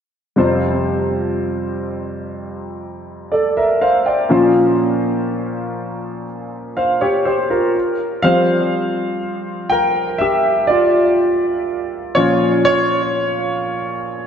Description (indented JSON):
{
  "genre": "pop",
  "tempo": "61 BPM",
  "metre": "4/4",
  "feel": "straight",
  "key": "unclear",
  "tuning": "A4 = 442 Hz",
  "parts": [
    { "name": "clear concert grand piano", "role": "solo", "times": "0.4-14.3 s", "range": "F2 to G5", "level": "-15 LUFS", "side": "equal", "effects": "lush chorus, analog delay" }
  ],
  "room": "wet plate reverb, RT60 2.7 s",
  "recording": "dreamy mix soaked in reverb, nothing above 7.8 kHz",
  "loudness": "-15 LUFS",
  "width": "side -8 dB against mid",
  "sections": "0.4-8.2 A section; 8.2-14.3 B section",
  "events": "grand piano solo 8.2-14.3",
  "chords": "0.4 Fsus2; 4.3 Bbmadd9; 7.7 N.C.; 8.2 Fsus2; 12.2 Bbm"
}